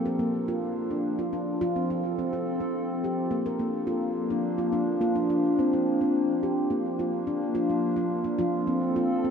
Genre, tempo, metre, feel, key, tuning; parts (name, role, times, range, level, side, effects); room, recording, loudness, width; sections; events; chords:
world meditative, meditative tuned percussion; 71 BPM (dotted quarters); 6/8; straight; Bb major; A4 = 440 Hz
warbly tape-like pad; sustained chords; 0.0-9.3 s; F3 to A4; -29 LUFS; left 2 dB; chorus, built-in reverb
handpan; arpeggios; 0.0-9.3 s; F3 to Bb4; -26 LUFS; right 1 dB; diffuse ambient delay
wet huge ambient reverb, RT60 7.7 s; in a vast, echoing space; -25 LUFS; side -6 dB against mid
0.0-6.7 A section; 6.7-9.3 B section
0.0 Bb; 1.6 F; 3.3 Bb; 8.4 F